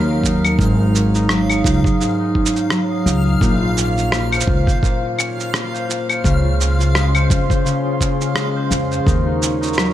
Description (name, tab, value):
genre	folktronica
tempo	85 BPM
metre	4/4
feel	swing 56% on 16ths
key	Db major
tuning	A4 = 439 Hz
part	concert harp	arpeggios	0.0-9.9 s	Ab2 to C5	-19 LUFS	left 1 dB	ping-pong delay
part	upright bass	bass	0.0-9.9 s	Ab1 to F2	-18 LUFS	equal	none
part	backwards swelling texture	texture	0.0-9.9 s	F5 to F6	-28 LUFS	equal	built-in reverb
part	electronic kick drum	drums	0.2-9.2 s	none	-18 LUFS	equal	none
part	electronic shaker, claves and rim click	drums	0.3-9.9 s	none	-22 LUFS	equal	none
part	warbly tape-like pad	sustained chords	6.6-9.9 s	Db4 to Db6	-24 LUFS	right 1 dB	chorus, built-in reverb
room	digital ambience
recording	none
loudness	-15 LUFS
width	side -12 dB against mid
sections	0.0-9.9 A section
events	none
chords	0.0 Ebm7; 0.6 Ab7sus4; 3.4 Bbmadd9; 6.2 Dbmaj7; 9.1 Ebm7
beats	| 0.59 1.30 2.01 2.71 | 3.42 4.12 4.83 5.54 | 6.24 6.95 7.65 8.36 | 9.06 9.77